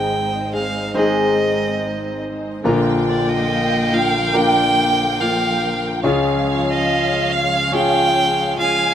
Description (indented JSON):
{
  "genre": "pop ballad",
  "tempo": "71 BPM",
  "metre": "4/4",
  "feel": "straight",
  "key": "unclear",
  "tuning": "A4 = 439 Hz",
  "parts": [
    { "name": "warm violin", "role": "melody", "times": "0.0-8.9 s", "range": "Db5 to G5", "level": "-20 LUFS", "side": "right 2 dB", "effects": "plate reverb" },
    { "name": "warm concert grand piano", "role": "accompaniment", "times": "0.0-8.9 s", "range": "Ab1 to C5", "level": "-21 LUFS", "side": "left 1 dB", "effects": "plate reverb" },
    { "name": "warm studio string section", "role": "sustained chords", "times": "0.0-8.9 s", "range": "D3 to F5", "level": "-28 LUFS", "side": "equal", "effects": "plate reverb" },
    { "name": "nylon-string guitar", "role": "arpeggios", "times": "0.0-8.9 s", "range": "Ab2 to Ab4", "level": "-23 LUFS", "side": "left 3 dB", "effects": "plate reverb" },
    { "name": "warm studio violin section", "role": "second line", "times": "2.7-8.9 s", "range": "F5 to Ab5", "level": "-22 LUFS", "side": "right 2 dB", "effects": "plate reverb" }
  ],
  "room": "moderate studio reverb, RT60 0.6 s",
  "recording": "rough home demo mix",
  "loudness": "-16 LUFS",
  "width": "side -9 dB against mid",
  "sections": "0.0-2.7 A section; 2.7-8.9 B section",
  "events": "none",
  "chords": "0.0 Ab; 2.7 Bb; 6.0 Db"
}